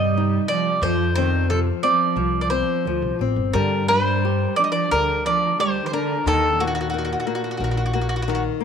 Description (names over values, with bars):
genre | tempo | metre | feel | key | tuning
fado-style ballad | 89 BPM | 4/4 | rubato | unclear | A4 = 439 Hz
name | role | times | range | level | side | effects
bowl-back mandolin | melody | 0.0-8.4 s | Gb4 to Eb5 | -22 LUFS | right 1 dB | none
rich cello | second line | 0.0-8.6 s | Bb2 to G3 | -27 LUFS | right 11 dB | none
flamenco guitar | accompaniment | 0.0-8.6 s | C3 to G4 | -26 LUFS | left 13 dB | none
upright bass | bass | 0.0-8.5 s | G1 to G2 | -24 LUFS | equal | none
room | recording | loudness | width
moderate plate reverb, RT60 3.4 s | 1960s-style stereo with parts hard left and right | -19 LUFS | side -7 dB against mid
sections
0.0-8.6 A section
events
none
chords
0.0 Cm; 0.8 F5; 3.5 G5; 6.3 Eb5